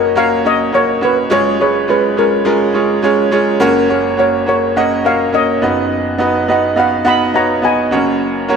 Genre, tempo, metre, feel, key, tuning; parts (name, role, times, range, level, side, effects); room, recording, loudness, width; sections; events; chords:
pop; 104 BPM; 4/4; straight; F# major; A4 = 441 Hz
steel pan; melody; 0.0-7.9 s; A#4 to B5; -16 LUFS; left 2 dB
bright concert grand piano; accompaniment; 0.0-8.6 s; F#1 to E#5; -13 LUFS; right 2 dB
wet plate reverb, RT60 2.6 s; dreamy mix soaked in reverb; -11 LUFS; side -6 dB against mid
0.0-8.6 A section
0.0 F#; 1.3 C#/F#; 3.6 F#; 5.6 B/F#; 7.9 F#